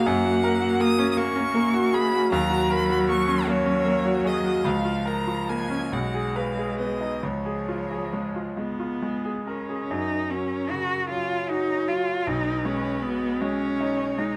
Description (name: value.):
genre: classical, slow romantic movement for piano trio.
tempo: 44-55 BPM (dotted quarters).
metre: 6/8.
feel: rubato.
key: F# major.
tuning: A4 = 440 Hz.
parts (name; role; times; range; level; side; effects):
rich violin; melody; 0.0-14.4 s; A#4 to D#6; -32 LUFS; equal; none.
clear cello; second line; 0.0-14.4 s; E#3 to F#4; -30 LUFS; equal; none.
bright concert grand piano; accompaniment; 0.0-14.4 s; B1 to B4; -28 LUFS; equal; none.
room: light reverb.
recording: close, detailed microphones.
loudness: -25 LUFS.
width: mono.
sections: 0.0-9.9 A section; 9.9-14.4 B section.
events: none.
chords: 0.1 F#; 2.3 D#m7; 4.6 A#m/C#; 5.9 G#m/B; 7.2 C#; 9.9 F#; 12.3 G#m/B.